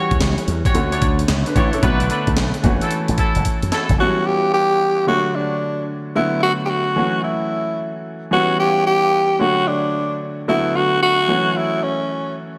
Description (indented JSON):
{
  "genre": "R&B, new jack swing",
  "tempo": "111 BPM",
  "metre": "4/4",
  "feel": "swing 65% on 16ths",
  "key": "E dorian",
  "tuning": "A4 = 440 Hz",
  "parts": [
    { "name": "clear baby grand piano", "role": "accompaniment", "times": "0.0-12.6 s", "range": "D3 to F#5", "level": "-24 LUFS", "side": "equal", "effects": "none" },
    { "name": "warm horn section", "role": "stabs", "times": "0.0-3.9 s", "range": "D4 to C#5", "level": "-27 LUFS", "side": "equal", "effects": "digital delay" },
    { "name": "slap bass with an envelope filter", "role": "bass", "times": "0.1-4.0 s", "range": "F#1 to F#2", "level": "-23 LUFS", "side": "equal", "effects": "none" },
    { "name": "breakbeat sampler-style drum kit", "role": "drums", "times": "0.1-4.0 s", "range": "hi-hat, kick drum, snare drum", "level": "-23 LUFS", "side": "equal", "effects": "gated reverb" },
    { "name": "growling tenor saxophone", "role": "melody", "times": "4.0-12.4 s", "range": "C#4 to G4", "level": "-20 LUFS", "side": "equal", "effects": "none" }
  ],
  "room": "wet lush hall reverb, RT60 1.7 s, small room ambience",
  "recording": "bright 1980s-style digital production",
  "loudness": "-18 LUFS",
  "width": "mono",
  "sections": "0.0-4.0 A section; 4.0-12.6 B section",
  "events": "drum fill 3.5-4.0",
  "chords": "0.0 Em69; 0.7 Dmaj7; 1.8 Bm7; 2.6 F#m7; 4.0 Em69; 5.1 Dmaj7; 6.2 Bm7; 7.0 F#m7; 8.3 Em69; 9.4 Dmaj7; 10.5 Bm7; 11.3 F#m7"
}